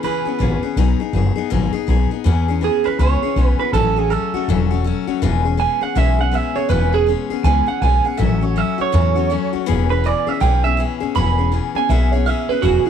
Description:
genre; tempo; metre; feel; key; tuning
rockabilly; 162 BPM; 4/4; swing 62% on 8ths; E major; A4 = 440 Hz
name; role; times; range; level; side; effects
electric guitar through a small old amp; melody; 0.0-12.9 s; E4 to B5; -20 LUFS; right 13 dB; tape echo
picked steel-string acoustic guitar; accompaniment; 0.0-12.9 s; A2 to G#4; -21 LUFS; left 12 dB; none
upright bass; bass; 0.0-12.9 s; E1 to E2; -17 LUFS; equal; none
room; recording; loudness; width
small room reverb; 1960s-style stereo with parts hard left and right; -15 LUFS; side -8 dB against mid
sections
0.0-2.3 A section; 2.3-12.9 B section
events
clean electric guitar solo 2.3-12.9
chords
0.0 E6; 0.8 B6; 2.3 E6; 3.7 A6; 5.2 E6; 8.2 A6; 9.7 E6

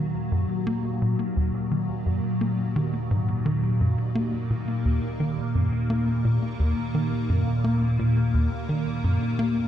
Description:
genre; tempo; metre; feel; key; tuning
ambient, sequencer-driven space music; 86 BPM; 4/4; straight; Eb minor; A4 = 439 Hz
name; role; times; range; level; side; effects
evolving wavetable pad; sustained chords; 0.0-9.7 s; Eb2 to Bb3; -25 LUFS; equal; ensemble chorus, built-in reverb, phaser
tight sequencer bass; riff; 0.0-9.7 s; Eb2 to Bb3; -26 LUFS; equal; tape echo
room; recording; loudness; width
wet concert hall reverb, RT60 2.3 s; dark, warm production; -22 LUFS; side -10 dB against mid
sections
0.0-9.7 A section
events
none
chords
0.0 Ebm

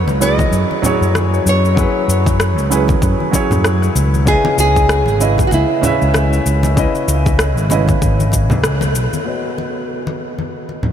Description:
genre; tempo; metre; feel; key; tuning
sunset chillout; 96 BPM; 4/4; swing 58% on 16ths; C# minor; A4 = 440 Hz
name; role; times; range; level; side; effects
nylon-string guitar; melody; 0.0-8.6 s; E4 to D#5; -20 LUFS; right 1 dB; tape echo
warm grand piano; accompaniment; 0.0-10.9 s; C#3 to E5; -19 LUFS; moving between left 4 dB and right 5 dB; auto-pan, low-pass filter, ping-pong delay
fingered electric bass; bass; 0.0-9.1 s; G#1 to F#2; -16 LUFS; equal; none
electronic shaker and rim click; drums; 0.1-9.2 s; none; -23 LUFS; left 1 dB; overdrive, low-pass filter on perc, small room reverb, low-pass filter on snare
congas; percussion; 0.1-10.9 s; none; -24 LUFS; left 2 dB; none
electronic kick drum; drums; 0.4-8.5 s; none; -17 LUFS; equal; overdrive, small room reverb
room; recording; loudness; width
moderate huge ambient reverb, RT60 8.0 s; dreamy mix soaked in reverb; -12 LUFS; side -9 dB against mid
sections
0.0-9.3 A section; 9.3-10.9 B section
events
band accent 8.6-9.0; filter sweep on drum 9.3-10.9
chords
0.0 F#7sus4; 4.3 C#m7; 9.3 B

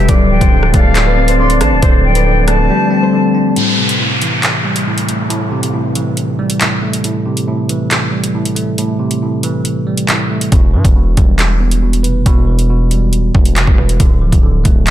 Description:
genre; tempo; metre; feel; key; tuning
hip hop, drill; 138 BPM; 4/4; half-time; A minor; A4 = 438 Hz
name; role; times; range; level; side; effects
concert harp; melody; 0.0-6.0 s; G3 to D5; -17 LUFS; left 5 dB; analog delay
reedy silver concert flute; second line; 0.0-3.5 s; F5 to C6; -20 LUFS; left 3 dB; analog delay
bell-like tine electric piano; accompaniment; 0.0-14.9 s; A2 to B4; -17 LUFS; right 2 dB; none
distorted 808-style bass; bass; 0.0-2.7, 10.5-14.9 s; D1 to G2; -13 LUFS; equal; distortion
flute section; sustained chords; 0.1-3.5 s; D4 to F5; -19 LUFS; left 1 dB; none
drill drum kit; drums; 0.1-14.9 s; handclaps, hi-hat, kick drum, rim click; -14 LUFS; equal; none
downlifter; sound effects; 3.6-7.0 s; none; -19 LUFS; equal; none
room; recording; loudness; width
moderate plate reverb, RT60 1.6 s, small room ambience; dreamy mix soaked in reverb; -10 LUFS; side -12 dB against mid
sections
0.0-3.6 A section; 3.6-14.9 B section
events
drums muted 2.7-3.6; break 3.6-10.5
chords
0.1 Dm7; 3.6 Am7; 10.5 Em; 14.0 Dm

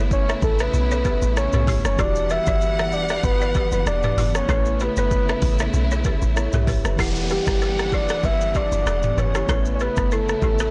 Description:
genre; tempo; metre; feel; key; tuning
afrobeats; 96 BPM; 4/4; swing 55% on 16ths; E dorian; A4 = 439 Hz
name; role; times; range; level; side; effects
mellow tine electric piano; accompaniment; 0.0-10.7 s; E3 to F#5; -34 LUFS; equal; none
warm studio string section; sustained chords; 0.0-10.7 s; C#3 to F#5; -32 LUFS; equal; none
balafon; riff; 0.0-10.7 s; E4 to E5; -34 LUFS; equal; digital delay
deep log drum bass; bass; 0.0-10.7 s; E1 to B1; -26 LUFS; equal; none
soft octave-layered synth lead; melody; 0.1-10.7 s; G4 to E5; -26 LUFS; equal; chorus, digital delay
afro-pop drum kit; drums; 0.1-10.7 s; hi-hat, kick drum, rim click, shaker, toms; -27 LUFS; equal; soft clipping on snare
downlifter; sound effects; 7.0-10.7 s; none; -36 LUFS; equal; none
room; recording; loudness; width
digital ambience; blown-out, overdriven recording, overdrive, nothing above 10.4 kHz; -21 LUFS; mono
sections
0.0-7.0 A section; 7.0-10.7 B section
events
none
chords
0.0 Aadd9; 2.0 Emadd9; 4.5 Aadd9; 7.0 Emadd9; 9.5 Aadd9

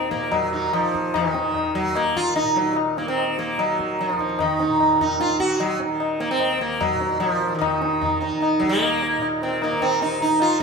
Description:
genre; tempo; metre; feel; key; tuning
indian classical, Hindustani; 149 BPM; 4/4; straight; Eb raga shivaranjani; A4 = 440 Hz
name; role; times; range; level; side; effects
sitar; melody; 0.0-10.6 s; Eb3 to Gb4; -21 LUFS; right 2 dB; none
tanpura; drone; 0.0-10.6 s; Eb2 to Eb3; -31 LUFS; right 1 dB; none
tabla; percussion; 0.1-10.6 s; none; -26 LUFS; left 7 dB; none
room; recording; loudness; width
wet recital hall reverb, RT60 1.6 s; none; -19 LUFS; side -4 dB against mid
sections
0.0-10.6 A section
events
speeding up 0.0-10.6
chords
none

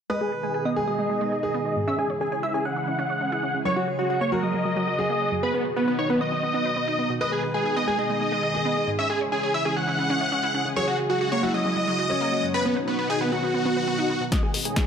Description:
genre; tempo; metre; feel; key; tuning
uplifting trance; 135 BPM; 4/4; straight; G# minor; A4 = 438 Hz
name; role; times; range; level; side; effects
big supersaw lead; melody; 0.1-14.9 s; B3 to F#5; -26 LUFS; equal; cassette tape, sidechain pumping, low-pass filter, digital delay
plucky unison lead; second line; 0.1-14.9 s; B4 to F#6; -34 LUFS; left 1 dB; sidechain pumping, digital delay
warm concert grand piano; second line; 0.1-12.9 s; C#4 to C#5; -30 LUFS; equal; tape echo
analog string pad; sustained chords; 0.1-14.9 s; B2 to G#4; -31 LUFS; equal; ensemble chorus, vintage 12-bit sampler grit, sidechain pumping
wide unison pluck; arpeggios; 0.1-14.8 s; F#2 to C#5; -29 LUFS; right 3 dB; sidechain pumping, digital delay
electronic kick drum; drums; 14.3-14.9 s; none; -23 LUFS; left 1 dB; overdrive
punchy analog drum machine; drums; 14.3-14.9 s; hi-hat, snare drum; -27 LUFS; left 2 dB; overdrive
riser; sound effects; 14.5-14.9 s; none; -42 LUFS; left 1 dB; none
room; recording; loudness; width
moderate digital room reverb, RT60 1.3 s, digital ambience; none; -22 LUFS; side -7 dB against mid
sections
0.1-14.3 A section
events
filter sweep on supersaw synth 0.1-14.3; filter sweep on synth arpeggio sound 0.1-14.3; filter sweep on digital synth lead 0.1-14.3; drum fill 14.3-14.9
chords
0.1 G#m; 1.9 C#m; 3.7 F#sus2; 5.4 B; 7.2 G#m; 9.0 C#m; 10.8 F#sus2; 12.5 B; 14.3 G#m

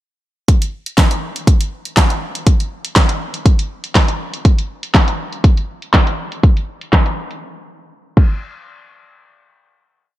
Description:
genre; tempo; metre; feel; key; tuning
pop; 121 BPM; 4/4; straight; none; none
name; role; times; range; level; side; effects
pop drum kit; drums; 0.5-8.3 s; crash cymbal, handclaps, hi-hat, kick drum, snare drum; -12 LUFS; equal; none
room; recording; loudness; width
little or no reverb; low-pass filter; -13 LUFS; side -15 dB against mid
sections
0.5-8.4 bridge; 8.4-10.2 final hit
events
filter sweep 0.5-8.4; break 7.4-8.4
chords
none

